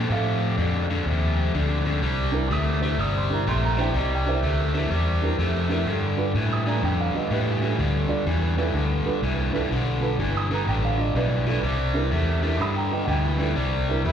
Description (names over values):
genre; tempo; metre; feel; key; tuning
blues; 125 BPM; 4/4; swing 65% on 8ths; C major; A4 = 438 Hz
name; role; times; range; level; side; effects
dark concert grand piano; accompaniment; 0.0-14.0 s; D4 to Eb6; -29 LUFS; right 6 dB; slapback echo
cranked stack guitar; riff; 0.0-14.1 s; F2 to A3; -26 LUFS; left 3 dB; overdrive, slapback echo
vintage muted fingered electric bass; bass; 0.0-14.1 s; G1 to A2; -24 LUFS; equal; none
overdriven harmonica; melody; 14.1 s; E4; -29 LUFS; left 1 dB; none
room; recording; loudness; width
light reverb, small room ambience; live gig heard through the venue's PA, recital hall reverb; -21 LUFS; side -8 dB against mid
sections
0.0-13.6 A section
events
none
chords
0.0 F7; 2.0 C9; 5.9 G9; 11.6 C9; 12.6 G9; 13.6 C9